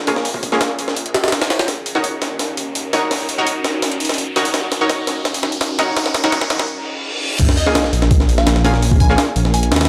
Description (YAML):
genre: drum and bass, jungle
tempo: 168 BPM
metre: 4/4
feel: straight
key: Bb minor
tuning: A4 = 441 Hz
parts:
  - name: ethereal airy pad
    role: sustained chords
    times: 0.0-9.9 s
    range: Db4 to Bb4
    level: -31 LUFS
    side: equal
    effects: ensemble chorus, built-in reverb, phaser
  - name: dark detuned saw bass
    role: bass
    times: 0.0-9.9 s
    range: F1 to Eb2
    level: -23 LUFS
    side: equal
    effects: high-pass filter
  - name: riser, reverse cymbal and sub drop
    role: sound effects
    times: 0.3-8.8 s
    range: none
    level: -29 LUFS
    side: equal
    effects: none
  - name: orchestra-hit-like synth stab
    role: stabs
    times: 0.1-9.2 s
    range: Bb3 to Db5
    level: -23 LUFS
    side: equal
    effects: built-in reverb, dub echo
  - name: breakbeat sampler-style drum kit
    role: drums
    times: 0.1-9.9 s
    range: crash cymbal, hi-hat, kick drum, snare drum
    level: -20 LUFS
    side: equal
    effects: high-pass filter on hats, high-pass filter on kick, high-pass filter on snare, high-pass filter on cymbals, high-pass filter on room
  - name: glassy wavetable pluck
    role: melody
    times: 7.6-9.9 s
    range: Eb5 to Ab5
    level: -26 LUFS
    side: equal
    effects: chorus, cassette tape, dub echo
room: light reverb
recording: dry, gritty hardware recording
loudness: -18 LUFS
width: mono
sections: 0.0-7.4 A section; 7.4-9.9 B section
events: build-up 0.0-7.4; riser 0.3-6.7; drum fill 1.7-6.7; break 6.7-7.4; reverse cymbal 6.7-7.4; drop 7.4-9.9; impact 7.4-8.8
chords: 0.0 Bbm7; 1.7 Ebm7; 7.4 Bbm7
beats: | 0.25 0.61 0.97 1.32 | 1.68 2.04 2.40 2.75 | 3.11 3.47 3.83 4.18 | 4.54 4.90 5.25 5.61 | 5.97 6.33 6.68 7.04 | 7.40 7.75 8.11 8.47 | 8.82 9.18 9.54